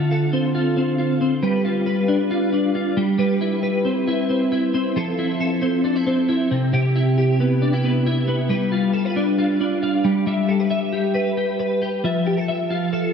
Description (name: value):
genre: indie pop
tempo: 136 BPM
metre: 4/4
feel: straight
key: C major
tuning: A4 = 440 Hz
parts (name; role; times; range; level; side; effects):
- twelve-string electric guitar; solo; 0.0-13.1 s; C3 to E5; -18 LUFS; equal; ensemble chorus, ping-pong delay
room: wet huge ambient reverb, RT60 4.2 s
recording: dreamy mix soaked in reverb, nothing above 10.3 kHz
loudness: -18 LUFS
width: side -6 dB against mid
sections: 0.0-8.5 A section; 8.5-13.1 A section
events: none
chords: 0.0 Dm7; 1.4 G7; 3.0 Cmaj7/G; 5.0 Fmaj7; 6.5 Cmaj7; 8.5 G7; 10.1 G6; 12.1 Fmaj7